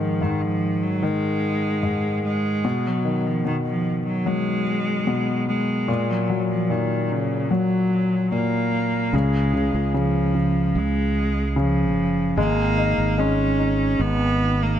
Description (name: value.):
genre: pop ballad.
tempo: 74 BPM.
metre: 4/4.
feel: straight.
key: unclear.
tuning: A4 = 439 Hz.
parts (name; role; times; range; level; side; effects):
rich cello; melody; 0.0-14.8 s; C#3 to C#4; -23 LUFS; right 2 dB; none.
warm concert grand piano; accompaniment; 0.0-14.8 s; G#2 to D#4; -23 LUFS; left 2 dB; none.
sustaining fretless electric bass; bass; 9.1-14.8 s; F#1 to C#2; -23 LUFS; right 1 dB; wide subtle chorus.
room: small room ambience.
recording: none.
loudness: -20 LUFS.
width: side -10 dB against mid.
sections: 0.0-9.1 A section; 9.1-14.8 B section.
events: none.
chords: 0.0 G#5; 2.6 B; 5.9 F#/A#; 9.1 C#; 12.4 G#sus2.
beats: 0.21 1.02 1.83 | 2.65 3.46 4.27 5.08 | 5.89 6.70 7.51 8.32 | 9.13 9.94 10.75 11.56 | 12.38 13.19 14.00.